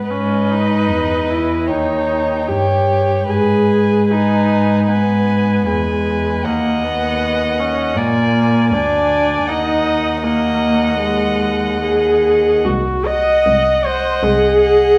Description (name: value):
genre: classical, slow romantic movement for string quartet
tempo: 77 BPM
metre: 4/4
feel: uneven beats, rubato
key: G# minor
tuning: A4 = 440 Hz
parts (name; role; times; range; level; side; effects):
- muted violin; second line; 0.0-15.0 s; B4 to D#5; -24 LUFS; equal; none
- muted viola; accompaniment; 0.0-15.0 s; G#3 to D#5; -19 LUFS; equal; none
- muted violin; melody; 0.1-15.0 s; D#5 to G#5; -27 LUFS; equal; none
- muted cello; bass; 0.1-14.9 s; B#1 to A#2; -21 LUFS; equal; none
room: wet recital hall reverb, RT60 1.4 s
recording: recorded in a church or concert hall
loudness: -16 LUFS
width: mono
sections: 0.1-15.0 A section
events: none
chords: 0.1 G#m; 1.7 D#7; 3.3 G#m; 6.4 D#m; 8.0 A#7; 9.5 D#m; 12.7 G#7/B#